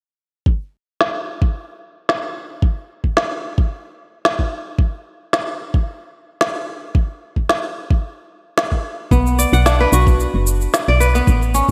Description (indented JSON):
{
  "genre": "organic downtempo",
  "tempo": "111 BPM",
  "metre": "4/4",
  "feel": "swing 53% on 16ths",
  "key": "B minor pentatonic",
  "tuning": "A4 = 440 Hz",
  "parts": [
    { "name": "electronic kick drum", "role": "drums", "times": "0.5-11.7 s", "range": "none", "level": "-18 LUFS", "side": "equal", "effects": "none" },
    { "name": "electronic snare drum and shaker", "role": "drums", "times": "1.0-11.7 s", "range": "none", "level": "-23 LUFS", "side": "equal", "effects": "low-pass filter on snare, low-pass filter on perc, low-pass filter on room" },
    { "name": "kora", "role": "arpeggios", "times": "9.1-11.7 s", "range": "B3 to F#5", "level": "-20 LUFS", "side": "equal", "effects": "delay" },
    { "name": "woody FM bass", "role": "bass", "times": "9.1-11.7 s", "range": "F#1 to B1", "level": "-18 LUFS", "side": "equal", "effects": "sidechain pumping" }
  ],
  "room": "moderate lush hall reverb, RT60 2.1 s",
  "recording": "bright 1980s-style digital production",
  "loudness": "-19 LUFS",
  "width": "mono",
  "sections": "0.5-11.7 A section",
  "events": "filter sweep on drum 0.5-11.7",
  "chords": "0.5 N.C.; 9.1 Bm"
}